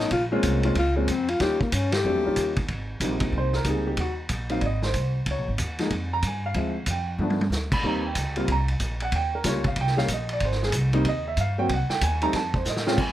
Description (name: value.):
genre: jazz, small-group swing and bop.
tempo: 186 BPM.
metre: 4/4.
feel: swing 63% on 8ths.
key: Ab major.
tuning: A4 = 440 Hz.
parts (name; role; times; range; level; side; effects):
mellow tenor saxophone; melody; 0.0-2.6 s; Ab3 to G4; -25 LUFS; left 3 dB; none.
warm baby grand piano; accompaniment; 0.0-13.1 s; Bb2 to B5; -27 LUFS; right 1 dB; none.
upright bass; bass; 0.0-13.1 s; Ab1 to A2; -27 LUFS; equal; none.
vintage drum kit; drums; 0.1-13.1 s; crash cymbal, hi-hat, kick drum, ride cymbal, snare drum, toms; -29 LUFS; equal; none.
room: light reverb.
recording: none.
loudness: -22 LUFS.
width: side -13 dB against mid.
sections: 0.0-2.7 A section; 2.7-13.0 B section.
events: band accent 1.9; drum fill 7.2-7.5, 12.7-13.0.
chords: 0.1 Bbm9; 1.4 Eb7; 2.7 Abmaj7; 4.0 Ebm; 4.6 Ab; 5.3 Db6; 6.5 Dm7b5; 7.2 G7; 7.8 Cm7; 10.4 Abmaj7; 11.7 Cm; 12.3 F.